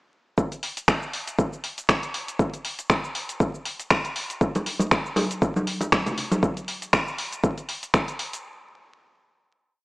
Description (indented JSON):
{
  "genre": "house",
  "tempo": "119 BPM",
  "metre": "4/4",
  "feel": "swing 56% on 16ths",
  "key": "none",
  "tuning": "none",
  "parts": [
    { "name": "electronic kick drum", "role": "drums", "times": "0.4-8.1 s", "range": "none", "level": "-23 LUFS", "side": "equal", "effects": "none" },
    { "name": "punchy analog drum machine", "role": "drums", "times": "0.4-8.4 s", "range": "cabasa, finger snaps, hi-hat", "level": "-25 LUFS", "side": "equal", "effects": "overdrive" },
    { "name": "congas", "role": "percussion", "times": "4.6-6.4 s", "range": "none", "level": "-26 LUFS", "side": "equal", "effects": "sidechain pumping on perc" }
  ],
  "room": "light reverb",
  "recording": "vinyl crackle, small speaker sound",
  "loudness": "-23 LUFS",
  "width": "side -21 dB against mid",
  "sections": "0.4-8.4 drop",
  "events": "drop 0.4-8.4",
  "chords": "none"
}